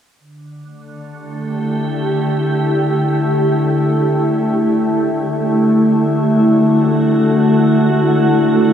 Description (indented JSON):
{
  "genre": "ambient",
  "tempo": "free time",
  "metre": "none",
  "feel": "none",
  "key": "D major",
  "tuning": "A4 = 440 Hz",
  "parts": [
    { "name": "glassy FM pad", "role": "solo", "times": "1.3-8.7 s", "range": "D3 to G4", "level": "-13 LUFS", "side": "equal", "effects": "ensemble chorus, built-in reverb, tape echo" }
  ],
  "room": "wet cathedral reverb, RT60 6.2 s",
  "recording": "dreamy mix soaked in reverb",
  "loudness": "-12 LUFS",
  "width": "side -9 dB against mid",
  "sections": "0.2-8.7 A section",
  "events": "none",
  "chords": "0.2 Dsus4",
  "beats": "free time"
}